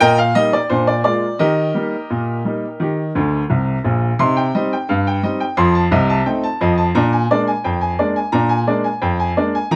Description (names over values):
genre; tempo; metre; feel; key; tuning
ragtime piano; 87 BPM; 2/4; straight; unclear; A4 = 440 Hz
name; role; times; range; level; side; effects
bright upright piano; solo; 0.0-9.8 s; Bb1 to C6; -17 LUFS; equal; none
room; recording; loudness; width
little or no reverb; close, detailed microphones; -18 LUFS; mono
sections
0.0-4.2 A section; 4.2-9.8 B section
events
upright piano fill 3.1-4.2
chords
0.0 Eb/Bb; 0.7 Bb7; 1.4 Eb; 4.2 Cm; 5.6 F7; 7.0 Bb7